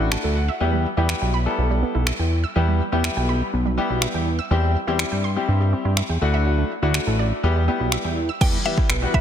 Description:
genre	dance-pop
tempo	123 BPM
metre	4/4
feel	straight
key	E minor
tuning	A4 = 439 Hz
part	clear concert grand piano	accompaniment	0.0-9.2 s	G3 to A5	-25 LUFS	left 4 dB	sidechain pumping
part	wide unison pluck	arpeggios	0.0-9.2 s	E3 to E6	-29 LUFS	right 6 dB	sidechain pumping, digital delay
part	chorused synth bass	bass	0.0-9.2 s	A1 to G2	-21 LUFS	equal	sidechain pumping
part	deep house drum kit	drums	0.1-9.2 s	crash cymbal, finger snaps, kick drum	-25 LUFS	equal	overdrive, soft clipping on snare
part	mallet-like synth pluck	melody	8.4-9.2 s	E5 to G5	-26 LUFS	right 1 dB	chorus
part	ethereal airy pad	sustained chords	8.6-9.2 s	E3 to B4	-30 LUFS	equal	ensemble chorus, built-in reverb, tremolo, sidechain pumping
room	light reverb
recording	dense, heavily limited modern master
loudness	-19 LUFS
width	side -9 dB against mid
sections	0.0-8.4 A section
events	grand piano fill 0.0-0.6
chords	0.0 Dadd9; 0.6 Em; 4.5 C/E; 6.2 Dadd9; 7.4 Em

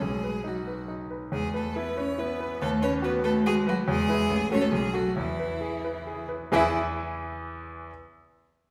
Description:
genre	quick classical-period movement for piano trio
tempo	131-144 BPM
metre	3/4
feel	straight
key	E major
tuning	A4 = 441 Hz
part	clear violin	melody	0.0-6.8 s	E4 to C#5	-34 LUFS	equal	none
part	rich cello	second line	0.0-6.8 s	E3 to E4	-32 LUFS	equal	none
part	bright concert grand piano	accompaniment	0.0-7.9 s	A1 to G#5	-32 LUFS	equal	none
room	wet recital hall reverb, RT60 1.4 s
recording	heard from further back in the room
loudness	-28 LUFS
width	mono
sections	0.0-6.5 A section; 6.5-7.9 B section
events	slowing down 3.2-6.5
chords	0.0 B; 1.3 E5; 2.6 B/D#; 3.9 E; 4.3 F#m/A; 4.7 B5; 5.2 E

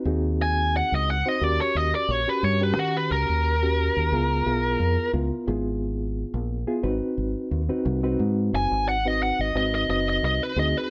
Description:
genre	straight-eighth soul blues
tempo	88 BPM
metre	4/4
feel	swing 54% on 16ths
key	unclear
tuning	A4 = 441 Hz
part	mellow reed electric piano	accompaniment	0.0-10.9 s	Cb4 to C5	-30 LUFS	equal	fast tremolo
part	deep dub fingered electric bass	bass	0.1-10.7 s	Gb1 to Eb3	-28 LUFS	equal	none
part	biting lead guitar	melody	0.4-10.9 s	F#4 to Ab5	-27 LUFS	equal	overdrive
room	light reverb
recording	band playing live in one room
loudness	-24 LUFS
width	mono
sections	0.0-10.9 A section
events	lead electric guitar solo 0.0-10.9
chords	0.0 Ab7; 1.4 Eb7#9; 4.1 Db7#9; 6.8 Ab7#9

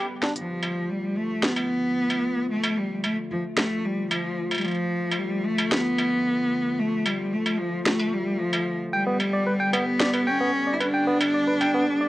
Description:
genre	IDM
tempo	112 BPM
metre	4/4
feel	straight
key	unclear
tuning	A4 = 440 Hz
part	warbly tape-like pad	sustained chords	0.0-12.1 s	D3 to G4	-32 LUFS	left 2 dB	chorus, built-in reverb, cassette tape, plate reverb
part	barky tine electric piano	arpeggios	0.0-0.3, 8.9-12.1 s	B3 to G5	-26 LUFS	equal	overdrive, cassette tape, analog delay, plate reverb
part	industrial drum kit	drums	0.2-11.7 s	hi-hat, snare drum, struck metal	-26 LUFS	equal	none
part	rich cello	melody	0.4-12.1 s	F3 to E4	-24 LUFS	equal	vintage 12-bit sampler grit, cassette tape, analog delay, plate reverb
room	wet booth ambience, RT60 0.2 s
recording	home recording on cassette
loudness	-22 LUFS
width	side -16 dB against mid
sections	0.4-12.1 A section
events	none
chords	0.4 Dm; 8.9 G

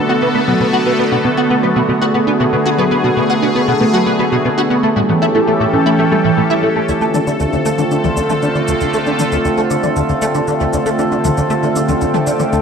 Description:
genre	ambient, sequencer-driven space music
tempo	117 BPM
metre	4/4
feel	straight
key	D minor from 6.9 s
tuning	A4 = 442 Hz
part	sweeping resonant pad	sustained chords	0.0-12.6 s	D3 to A4	-15 LUFS	equal	chorus
part	soft round pluck	arpeggios	0.1-6.7 s	E3 to F#4	-18 LUFS	moving between left 2 dB and right 5 dB	chorus, auto-pan, tape echo
part	plucky analog bass	riff	0.1-12.6 s	D2 to F#4	-17 LUFS	equal	ensemble chorus, tape echo
part	electronic shaker and toms	percussion	6.9-12.6 s	none	-25 LUFS	left 6 dB	tape echo
part	bubbling stepped-filter texture	texture	10.5-12.6 s	G4 to G5	-36 LUFS	equal	none
room	wet echo chamber reverb, RT60 2.2 s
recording	echo-heavy mix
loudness	-12 LUFS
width	side -6 dB against mid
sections	0.0-6.9 A section; 6.9-12.6 B section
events	none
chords	0.0 Bm7; 4.8 A7; 6.9 Dm7

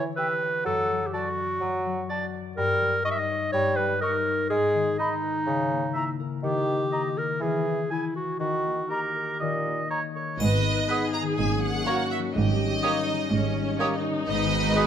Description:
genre	cinematic, playful, whimsical film cue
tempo	124 BPM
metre	4/4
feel	straight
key	unclear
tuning	A4 = 440 Hz
part	clear clarinet	second line	0.0-14.9 s	D#4 to E5	-27 LUFS	equal	none
part	warm bassoon	accompaniment	0.0-14.9 s	A#2 to B3	-32 LUFS	right 2 dB	none
part	concert harp	arpeggios	0.0-14.9 s	F#2 to D#5	-31 LUFS	left 8 dB	none
part	mellow concert flute	second line	0.2-14.8 s	G5 to D#6	-32 LUFS	right 1 dB	none
part	warm oboe	second line	0.2-14.9 s	A#4 to G#5	-33 LUFS	right 2 dB	none
part	rich studio violin section	melody	10.4-14.9 s	D#5 to A#5	-30 LUFS	equal	none
part	warm studio viola section	accompaniment	10.4-14.9 s	C#4 to B4	-31 LUFS	right 2 dB	none
part	dark French horn section	sustained chords	10.4-14.9 s	G3 to D#4	-32 LUFS	left 4 dB	none
part	rich studio cello section	bass	10.4-14.9 s	G#2	-28 LUFS	right 4 dB	none
part	rich studio double bass section	bass	10.4-14.9 s	G#1	-30 LUFS	right 5 dB	none
part	triangle	percussion	10.4-11.3 s	none	-43 LUFS	left 2 dB	none
part	clear studio violin section	second line	10.9-14.9 s	D#4 to D#5	-33 LUFS	left 1 dB	none
room	light reverb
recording	close, detailed microphones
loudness	-24 LUFS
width	side -9 dB against mid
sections	0.0-10.4 A section; 10.4-14.9 B section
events	none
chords	0.0 C#dim/E; 0.7 D/F#; 2.6 D#7/G; 4.5 G#m; 5.5 A#dim/C#; 6.4 D#; 7.4 E; 8.4 D#; 10.4 G#m; 11.4 F#/G#; 12.4 D#7/G#; 14.3 G#m

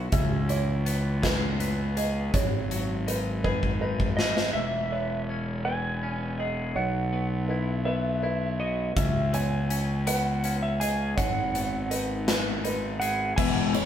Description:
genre	post-rock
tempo	54 BPM (dotted quarters)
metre	6/8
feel	straight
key	E major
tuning	A4 = 443 Hz
part	felt-muted upright piano	arpeggios	0.0-13.9 s	B4 to E5	-34 LUFS	right 2 dB	none
part	twelve-string electric guitar	arpeggios	0.0-13.9 s	E2 to G#4	-34 LUFS	left 3 dB	none
part	fuzz fingered electric bass	bass	0.0-13.9 s	E1 to C#2	-29 LUFS	equal	overdrive
part	big rock drum kit	drums	0.1-4.5, 9.0-13.9 s	crash cymbal, hi-hat, kick drum, ride cymbal, snare drum	-29 LUFS	equal	none
part	clean lap steel guitar	melody	4.2-13.9 s	D#5 to G#5	-31 LUFS	right 1 dB	none
part	crunchy overdriven guitar	riff	13.4-13.9 s	E3 to B3	-25 LUFS	left 8 dB	phaser
room	moderate stone room reverb, RT60 1.2 s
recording	band playing live in one room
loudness	-24 LUFS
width	side -10 dB against mid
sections	0.0-4.5 A section; 4.5-13.4 B section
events	drum fill 3.4-4.5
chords	0.1 C#m7; 2.3 G#m7; 4.5 E6; 6.8 Bsus4; 9.0 C#m7; 11.2 G#m7

